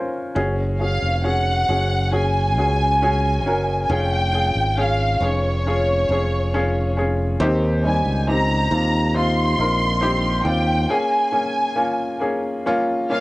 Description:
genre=pop ballad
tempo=68 BPM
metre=4/4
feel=straight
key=unclear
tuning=A4 = 441 Hz
part: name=warm baby grand piano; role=accompaniment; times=0.0-13.2 s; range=Db2 to C5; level=-23 LUFS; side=left 1 dB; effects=cassette tape
part: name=modern bright fingered electric bass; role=bass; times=0.4-10.9 s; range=F1 to Eb2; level=-21 LUFS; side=equal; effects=none
part: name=warm symphonic violin section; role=melody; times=0.8-13.2 s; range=Db5 to C6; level=-22 LUFS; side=equal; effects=cassette tape
room=light reverb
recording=home recording on cassette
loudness=-18 LUFS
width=side -20 dB against mid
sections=0.4-13.2 A section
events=none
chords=0.4 Gbsus2; 3.9 Db/F; 7.4 Eb6; 10.9 Bbm7

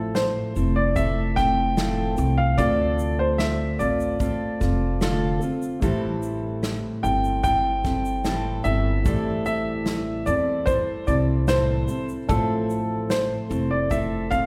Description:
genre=acoustic pop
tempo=74 BPM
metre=4/4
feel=straight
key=A minor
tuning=A4 = 440 Hz
part: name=warm upright piano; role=melody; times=0.0-14.5 s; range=A4 to G5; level=-28 LUFS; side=equal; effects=none
part: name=felt-muted upright piano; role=accompaniment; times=0.0-14.5 s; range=A3 to E5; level=-38 LUFS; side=equal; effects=none
part: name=fingerpicked steel-string acoustic guitar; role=accompaniment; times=0.0-14.5 s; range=A2 to A4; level=-29 LUFS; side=equal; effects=none
part: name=upright bass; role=bass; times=0.0-14.5 s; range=F1 to E2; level=-29 LUFS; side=equal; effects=none
part: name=unplugged drum kit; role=drums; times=0.1-14.5 s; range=kick drum, shaker, snare drum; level=-31 LUFS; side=equal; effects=none
room=moderate concert hall reverb, RT60 2.0 s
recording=recorded in a church or concert hall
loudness=-23 LUFS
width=mono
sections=0.0-14.5 A section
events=none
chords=0.0 Fmaj7; 2.6 Dm7; 5.8 Am7; 12.3 Fmaj7

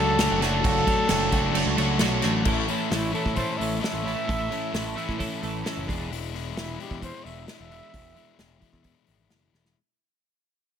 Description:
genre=indie rock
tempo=132 BPM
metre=4/4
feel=straight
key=A major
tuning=A4 = 440 Hz
part: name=dark trumpet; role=melody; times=0.0-8.8 s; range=E4 to E5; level=-29 LUFS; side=right 1 dB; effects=analog delay
part: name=phased analog pad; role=sustained chords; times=0.0-2.4 s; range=A4 to C#6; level=-40 LUFS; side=right 2 dB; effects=none
part: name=overdriven semi-hollow guitar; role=riff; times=0.0-9.8 s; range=E2 to F#4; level=-30 LUFS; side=left 11 dB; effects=none
part: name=twelve-string electric guitar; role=riff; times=0.0-6.1 s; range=A2 to C#5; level=-30 LUFS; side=right 8 dB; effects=analog chorus, analog delay
part: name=growling picked electric bass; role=bass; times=0.0-9.7 s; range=E1 to A2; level=-30 LUFS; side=right 1 dB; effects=overdrive
part: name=unplugged drum kit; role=drums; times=0.2-9.8 s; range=crash cymbal, hi-hat, kick drum, snare drum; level=-28 LUFS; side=equal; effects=none
room=little or no reverb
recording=none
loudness=-23 LUFS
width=side -8 dB against mid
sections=0.0-2.5 A section; 2.5-9.8 B section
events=fade-out 2.5-9.8; trumpet solo 2.5-9.8; drum fill 9.5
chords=0.0 Dmaj7/F#; 2.5 A; 5.9 E7

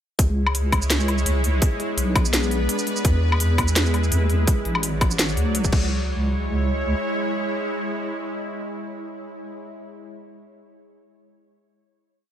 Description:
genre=half-time drum and bass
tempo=168 BPM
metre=4/4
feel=swing 55% on 16ths, half-time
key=C# phrygian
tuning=A4 = 436 Hz
part: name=bowed-like drone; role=sustained chords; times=0.4-9.5 s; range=F#3 to D5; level=-27 LUFS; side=equal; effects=built-in reverb, sidechain pumping
part: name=deep soft wobble bass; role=bass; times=0.2-6.9 s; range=A1 to E2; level=-21 LUFS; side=equal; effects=chorus, tube saturation
part: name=drum and bass drum kit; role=drums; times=0.2-5.8 s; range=crash cymbal, hi-hat, shaker, snare drum, woodblock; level=-24 LUFS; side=left 1 dB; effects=studio reverb
part: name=electronic kick drum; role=drums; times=0.2-5.8 s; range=none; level=-20 LUFS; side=equal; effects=overdrive, studio reverb
part: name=pulsing gated texture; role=texture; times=0.2-5.9 s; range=G#3 to G#4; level=-33 LUFS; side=equal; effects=chorus, built-in reverb
room=light reverb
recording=none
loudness=-19 LUFS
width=side -10 dB against mid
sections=0.2-5.9 drop; 5.9-8.8 final hit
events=drop 0.2-5.9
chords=0.2 C#m; 1.6 Bm; 3.0 E; 4.5 D; 5.7 C#m

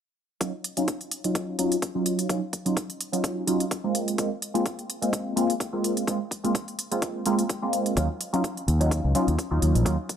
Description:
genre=filtered disco house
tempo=127 BPM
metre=4/4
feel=swing 54% on 16ths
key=Eb dorian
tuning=A4 = 438 Hz
part: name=funky polysynth comp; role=accompaniment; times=0.4-10.0 s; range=Gb3 to F4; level=-26 LUFS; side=equal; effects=chorus, phaser, sidechain pumping, low-pass filter
part: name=electronic hi-hat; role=drums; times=0.4-10.2 s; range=none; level=-32 LUFS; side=right 1 dB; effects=sidechain pumping on hats, studio ambience
part: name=electronic kick drum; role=drums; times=0.4-10.2 s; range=none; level=-31 LUFS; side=equal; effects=high-pass filter on kick, studio ambience
part: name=modern bright fingered electric bass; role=bass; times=8.0-10.0 s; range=Bb1 to Eb2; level=-22 LUFS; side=equal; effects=sidechain pumping, low-pass filter
room=moderate echo chamber reverb, RT60 1.8 s, digital ambience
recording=none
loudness=-24 LUFS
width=side -8 dB against mid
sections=0.4-10.2 A section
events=filter sweep 0.4-10.2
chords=0.4 Ebm9; 4.0 Ab69; 8.0 Ebm9

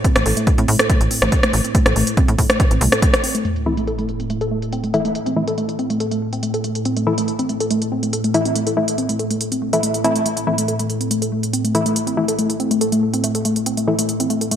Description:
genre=driving peak-time techno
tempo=141 BPM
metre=4/4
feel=straight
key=A minor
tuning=A4 = 440 Hz
part: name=woody wave-folded pluck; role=riff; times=0.0-14.6 s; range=A3 to A4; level=-21 LUFS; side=equal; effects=chorus, tube saturation, sidechain pumping, ping-pong delay
part: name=deep dark ambient pad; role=drone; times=0.0-14.6 s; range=A2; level=-26 LUFS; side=right 2 dB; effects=chorus, built-in reverb, sidechain pumping
part: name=electronic kick drum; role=drums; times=0.0-3.1 s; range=none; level=-17 LUFS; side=equal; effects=small room ambience
part: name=techno drum kit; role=drums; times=0.0-14.6 s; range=hi-hat, rim click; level=-21 LUFS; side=equal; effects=overdrive, low-pass filter on hats, small room ambience, low-pass filter on snare, gated reverb
part: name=tight sequencer bass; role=bass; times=0.2-2.9 s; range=A1 to A2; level=-18 LUFS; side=equal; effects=sidechain pumping
part: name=sub drop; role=sound effects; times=3.4-5.2 s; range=none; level=-27 LUFS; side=equal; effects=none
part: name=filtered dub chord stab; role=stabs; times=3.7-13.9 s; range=E3 to E4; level=-22 LUFS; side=left 2 dB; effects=chorus, sidechain pumping, digital delay
room=wet lush hall reverb, RT60 1.8 s, digital ambience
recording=bright 1980s-style digital production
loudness=-16 LUFS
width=side -9 dB against mid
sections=0.0-3.4 A section; 3.4-14.6 B section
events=impact 3.4-5.2; filter sweep on synth arpeggio sound 3.4-14.6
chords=0.0 A5

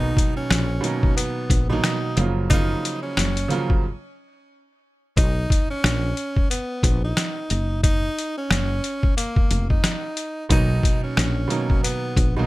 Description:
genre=hip hop, boom-bap hip-hop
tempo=90 BPM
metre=4/4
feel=swing 60% on 16ths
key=F# major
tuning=A4 = 441 Hz
part: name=breathy tenor saxophone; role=melody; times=0.0-12.5 s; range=A#3 to D#4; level=-28 LUFS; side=equal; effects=digital delay
part: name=warm upright piano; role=accompaniment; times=0.0-3.8, 10.5-12.5 s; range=B2 to E#4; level=-25 LUFS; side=right 3 dB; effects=cassette tape
part: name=woody fretless electric bass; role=bass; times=0.0-12.5 s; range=E#1 to B1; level=-23 LUFS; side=equal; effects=none
part: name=trip hop sampler-style drum kit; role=drums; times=0.2-12.4 s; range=hi-hat, kick drum, rim click, snare drum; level=-21 LUFS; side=equal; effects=none
room=little or no reverb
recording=none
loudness=-19 LUFS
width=side -19 dB against mid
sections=0.0-12.5 A section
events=break 3.8-5.2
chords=0.0 Bmaj7; 2.2 F#maj7; 5.2 A#madd11; 7.5 F#5; 10.5 Bmaj7

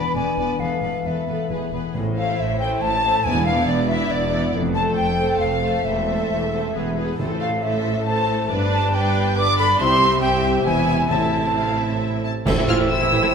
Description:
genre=classical, dramatic, fast romantic movement for symphony orchestra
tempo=137 BPM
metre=3/4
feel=rubato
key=A minor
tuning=A4 = 440 Hz
part: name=warm symphonic violin section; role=melody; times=0.0-13.3 s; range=B4 to F6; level=-30 LUFS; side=left 3 dB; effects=none
part: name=hollow concert flute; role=second line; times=0.0-13.3 s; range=D5 to D6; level=-23 LUFS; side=left 1 dB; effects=none
part: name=warm symphonic violin section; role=second line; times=0.0-13.3 s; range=C4 to D6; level=-28 LUFS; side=left 2 dB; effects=none
part: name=rich symphonic viola section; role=accompaniment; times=0.0-13.3 s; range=E3 to B4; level=-26 LUFS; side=right 2 dB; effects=none
part: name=dark French horn section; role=sustained chords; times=0.0-13.3 s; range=G#3 to C5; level=-30 LUFS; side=left 2 dB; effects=none
part: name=concert harp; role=arpeggios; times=0.0-13.3 s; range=E2 to E5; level=-28 LUFS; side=left 6 dB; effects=none
part: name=rich symphonic cello section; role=bass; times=0.1-13.3 s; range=C2 to A2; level=-28 LUFS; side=right 3 dB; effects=none
part: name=clear symphonic double bass section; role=bass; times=0.2-13.2 s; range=E1 to C2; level=-27 LUFS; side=right 4 dB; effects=none
part: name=timpani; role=percussion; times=1.9-3.9, 7.2-7.8, 11.1-13.1 s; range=E2 to A2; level=-29 LUFS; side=right 1 dB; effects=none
part: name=warm oboe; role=second line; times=12.5-13.3 s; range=E5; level=-28 LUFS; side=right 3 dB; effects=none
part: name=warm bassoon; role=accompaniment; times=12.5-13.3 s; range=C4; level=-25 LUFS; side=right 2 dB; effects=none
part: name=clear trombone section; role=sustained chords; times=12.5-13.3 s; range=E3 to A3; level=-29 LUFS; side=right 4 dB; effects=none
part: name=clash cymbals and concert bass drum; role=percussion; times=12.5-13.3 s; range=none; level=-27 LUFS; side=equal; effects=none
part: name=mellow clarinet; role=second line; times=12.7-13.3 s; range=E4 to F4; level=-29 LUFS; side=right 3 dB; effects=none
room=wet scoring stage reverb, RT60 1.8 s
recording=minimal, uncompressed stereo recording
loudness=-18 LUFS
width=side -6 dB against mid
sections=0.0-1.9 A section; 1.9-12.5 B section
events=band accent 12.5-12.9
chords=0.0 E7; 0.6 Esus4; 1.5 E; 1.9 Am; 3.3 E5; 4.5 F; 5.9 Am/E; 6.8 E; 7.2 Am; 8.5 G; 9.8 C; 10.7 E; 11.1 Am

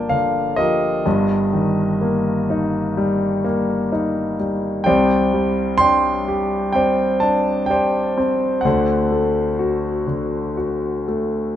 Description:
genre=classical, lyrical solo piano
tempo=63 BPM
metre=4/4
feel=rubato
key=unclear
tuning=A4 = 441 Hz
part: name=warm concert grand piano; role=solo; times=0.0-11.6 s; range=G1 to C6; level=-17 LUFS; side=equal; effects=none
room=moderate recital hall reverb, RT60 1.5 s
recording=none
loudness=-17 LUFS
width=side -11 dB against mid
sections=0.0-11.6 A section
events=none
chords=0.0 Gm7; 1.1 Eb/G; 4.9 Csus2; 8.7 D7

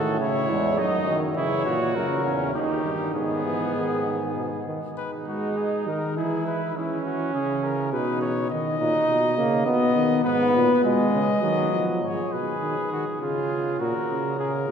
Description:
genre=classical, imitative canzona for brass ensemble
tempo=102 BPM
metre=3/4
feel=straight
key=G# minor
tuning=A4 = 440 Hz
part: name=warm trumpet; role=melody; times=0.0-14.7 s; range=E4 to D#5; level=-28 LUFS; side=left 3 dB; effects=none
part: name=warm trumpet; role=second line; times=0.0-8.5, 12.0-14.7 s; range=B3 to G#4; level=-30 LUFS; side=right 3 dB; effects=none
part: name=warm trombone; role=accompaniment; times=0.0-4.8, 8.8-12.0 s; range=B2 to D#4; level=-25 LUFS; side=equal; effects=none
part: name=mellow euphonium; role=bass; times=0.0-14.7 s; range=D#2 to G#3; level=-27 LUFS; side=right 1 dB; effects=none
room=wet cathedral reverb, RT60 5.3 s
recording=heard from further back in the room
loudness=-22 LUFS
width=side -7 dB against mid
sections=0.0-5.0 A section; 5.0-12.0 B section; 12.0-14.7 A section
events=none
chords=0.0 F#m; 0.8 D#m/F#; 1.4 A#dim; 2.5 D#; 3.1 G#m; 5.0 G#5; 6.2 E; 6.8 C#m/E; 7.9 Badd9; 8.5 D#5; 9.7 B; 10.2 G#m; 11.4 D#m; 12.0 G#m; 13.2 C#; 13.8 F#/A#

